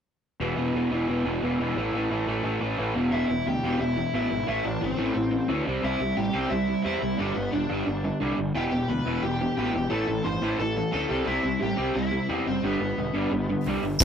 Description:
punk rock; 176 BPM; 4/4; straight; E minor; A4 = 440 Hz
raw garage guitar; riff; 0.4-14.0 s; E2 to C4; -26 LUFS; right 1 dB; overdrive
fuzz picked electric bass; bass; 0.4-14.0 s; E1 to E2; -33 LUFS; equal; overdrive
lead guitar through a small cranked amp; melody; 3.1-14.0 s; B3 to C6; -30 LUFS; left 3 dB; overdrive
big rock drum kit; drums; 14.0 s; hi-hat, kick drum; -16 LUFS; equal
moderate small room reverb, RT60 0.5 s; rough rehearsal-room recording; -24 LUFS; side -8 dB against mid
0.4-3.1 A section; 3.1-14.0 B section
0.4 E5; 1.8 A5; 3.0 E5; 3.1 Em; 4.5 Am; 5.7 C; 7.2 G; 8.6 Em; 9.9 Am; 11.1 C; 12.6 G

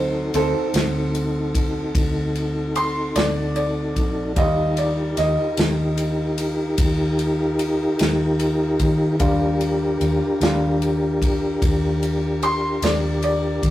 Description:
slow blues; 50 BPM (dotted quarters); 12/8; straight; A4 = 440 Hz
bright upright piano; accompaniment; 0.0-13.7 s; F#3 to C6; -24 LUFS; right 1 dB
mellow tonewheel organ; sustained chords; 0.0-13.7 s; C4 to Bb4; -23 LUFS; equal; chorus vibrato
vintage muted fingered electric bass; bass; 0.0-13.7 s; Bb1 to Eb3; -24 LUFS; equal
natural country drum kit; drums; 0.3-13.7 s; kick drum, ride cymbal, snare drum; -25 LUFS; equal
moderate studio reverb, RT60 0.7 s; rough rehearsal-room recording, tube saturation; -18 LUFS; side -14 dB against mid
0.0-13.7 A section
upright piano solo 0.0-13.7
0.0 D7b9; 4.4 Ebmaj7

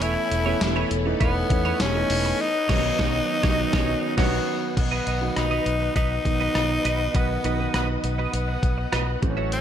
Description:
1980s-style pop; 101 BPM; 4/4; straight; A4 = 439 Hz
raspy tenor saxophone; melody; 0.0-9.6 s; B3 to E4; -26 LUFS; left 1 dB; tape echo
warm baby grand piano; accompaniment; 0.0-9.6 s; D#3 to F#4; -28 LUFS; right 2 dB
string machine, full ensemble; sustained chords; 0.0-9.6 s; A4 to E6; -33 LUFS; left 1 dB; ensemble chorus
twelve-string electric guitar; riff; 0.0-9.6 s; D#4 to E5; -32 LUFS; right 6 dB; tube saturation, analog chorus
vintage muted fingered electric bass; bass; 0.0-9.6 s; E1 to E2; -27 LUFS; equal
clean 12-bit digital drum machine; drums; 0.0-9.6 s; crash cymbal, hi-hat, kick drum, rim click, snare drum, tambourine; -26 LUFS; equal; gated reverb
light reverb; -21 LUFS; side -9 dB against mid
0.0-4.8 A section; 4.8-9.6 B section
band accent 2.4-4.8
0.0 Aadd9/E; 2.4 Badd9; 4.8 B

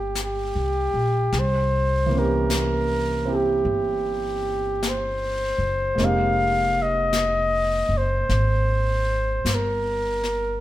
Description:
jazz ballad; 52 BPM; 4/4; swing 66% on 8ths; F minor; A4 = 444 Hz
warm flugelhorn; melody; 0.0-10.6 s; G4 to F5; -23 LUFS; equal
dark concert grand piano; accompaniment; 0.0-10.6 s; E3 to G4; -28 LUFS; right 3 dB
upright bass; bass; 0.0-10.6 s; F1 to C2; -25 LUFS; equal
jazz brush drum kit; drums; 0.2-10.6 s; brushed snare drum, hi-hat, snare drum; -32 LUFS; left 3 dB
moderate large studio reverb, RT60 1.4 s; -20 LUFS; side -14 dB against mid
0.0-10.6 A section
flugelhorn solo 0.0-10.6
0.0 Cm7; 1.3 C7b9; 6.0 Fm11

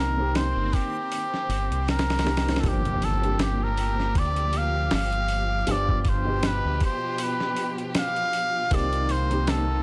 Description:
trip hop; 79 BPM; 4/4; swing 57% on 16ths; G minor; A4 = 442 Hz
trumpet with cup mute; melody; 0.0-9.8 s; G4 to F5; -30 LUFS; equal; tape echo
dark upright piano; accompaniment; 0.0-9.8 s; B2 to G4; -35 LUFS; equal; harmonic tremolo
deep dub fingered electric bass; bass; 0.0-9.8 s; G1 to D2; -29 LUFS; equal; tube saturation
backwards swelling texture; texture; 0.2-9.8 s; C4 to D6; -43 LUFS; equal
dusty soul sampler-style drum kit; drums; 0.4-9.7 s; hi-hat, kick drum, snare drum; -30 LUFS; equal; small room reverb
rich chamber string section; sustained chords; 2.6-9.8 s; B2 to G4; -37 LUFS; equal
impact; sound effects; 2.6-5.7 s; -36 LUFS; equal
small room ambience; dry, gritty hardware recording; -25 LUFS; mono
0.0-2.6 A section; 2.6-9.8 B section
impact 2.6-5.7
0.0 Cm7; 2.6 Gm7; 5.7 G7; 8.7 Cm7

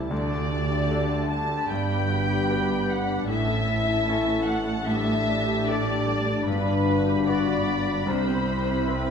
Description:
cinematic, emotional film score for orchestra; 75 BPM; 4/4; rubato; A4 = 439 Hz
muted studio violin section; melody; 0.0-9.1 s; A5 to B5; -36 LUFS; left 1 dB
bright grand piano; accompaniment; 0.0-9.1 s; C2 to B4; -30 LUFS; left 1 dB
muted studio viola section; accompaniment; 0.0-9.1 s; E3 to G4; -34 LUFS; equal
warm French horn section; sustained chords; 0.0-9.1 s; A3 to G4; -30 LUFS; left 3 dB
concert harp; arpeggios; 0.0-9.1 s; G2 to G4; -33 LUFS; left 7 dB
muted studio cello section; bass; 0.0-9.1 s; G2 to D3; -32 LUFS; right 5 dB
muted studio double bass section; bass; 0.0-9.1 s; G1 to D2; -30 LUFS; right 4 dB
muted studio violin section; second line; 0.1-9.1 s; B4 to A5; -28 LUFS; left 1 dB
wet recital hall reverb, RT60 1.5 s; minimal, uncompressed stereo recording; -22 LUFS; side -6 dB against mid
0.0-9.1 A section
0.1 Dsus4; 1.7 Gmaj7; 3.3 A; 4.9 Dsus4/A; 6.5 Gmaj7; 8.1 Cmaj7

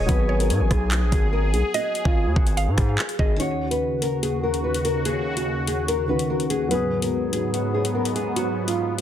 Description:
hip hop, drill; 145 BPM; 4/4; half-time; Eb minor; A4 = 440 Hz
nylon-string guitar; melody; 0.0-9.0 s; F4 to Db5; -26 LUFS; left 1 dB; digital delay
mallet-like synth pluck; second line; 0.0-3.4 s; Db5 to F5; -30 LUFS; right 4 dB; chorus, digital delay
dark concert grand piano; accompaniment; 0.0-9.0 s; Eb3 to Ab4; -30 LUFS; left 1 dB
sweeping resonant pad; sustained chords; 0.0-9.0 s; Eb2 to Ab5; -27 LUFS; equal; chorus
distorted 808-style bass; bass; 0.0-3.4 s; Ab1 to Ab2; -22 LUFS; equal; distortion
drill drum kit; drums; 0.1-9.0 s; handclaps, hi-hat, kick drum, rim click; -24 LUFS; equal
light reverb; dense, heavily limited modern master; -20 LUFS; side -10 dB against mid
0.0-3.4 A section; 3.4-9.0 B section
0.1 Abm7; 3.4 Ebm7; 6.7 Abm7

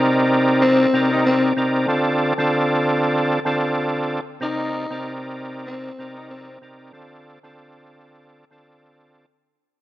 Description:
hip hop; 95 BPM; 4/4; swing 56% on 16ths; A4 = 440 Hz
growling tenor saxophone; melody; 0.0-6.6 s; C4 to Eb4; -22 LUFS; left 2 dB; high-pass filter, low-pass filter
overdriven tonewheel organ; accompaniment; 0.0-9.3 s; C3 to D5; -19 LUFS; equal; chorus vibrato, high-pass filter, low-pass filter
wet echo chamber reverb, RT60 2.2 s; dark, warm production, nothing above 7.6 kHz; -17 LUFS; side -15 dB against mid
0.0-9.5 A section
fade-out 0.0-9.5
0.0 Cm7; 1.9 Dm7; 4.4 Cm7; 6.9 Dm7

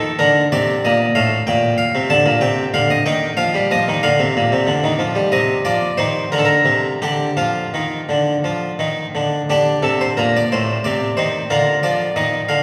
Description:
classical, baroque-style suite movement for harpsichord; 56-64 BPM (dotted quarters); 6/8; rubato; Bb major; A4 = 440 Hz
harpsichord; solo; 0.0-12.6 s; A2 to A5; -17 LUFS; equal
wet church reverb, RT60 3.0 s; heard from further back in the room, studio reverb; -17 LUFS; mono
0.0-9.5 A section; 9.5-12.6 A section
0.0 F; 1.5 Bb; 2.4 Cm; 4.3 Bb; 5.3 F5/C; 6.3 Bb; 7.4 Dm; 9.5 Bb; 10.5 Adim; 11.5 Bb/D

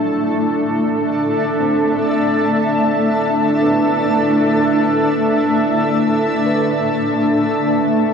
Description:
ambient; 74 BPM; 4/4; straight; A4 = 442 Hz
granular cloud pad; sustained chords; 0.0-8.1 s; A3 to A5; -14 LUFS; equal; built-in reverb
felt-muted upright piano; arpeggios; 0.0-8.1 s; F#3 to B4; -28 LUFS; equal
wet concert hall reverb, RT60 2.2 s; cassette tape; -14 LUFS; side -6 dB against mid
0.0-8.1 A section
0.0 D7sus4

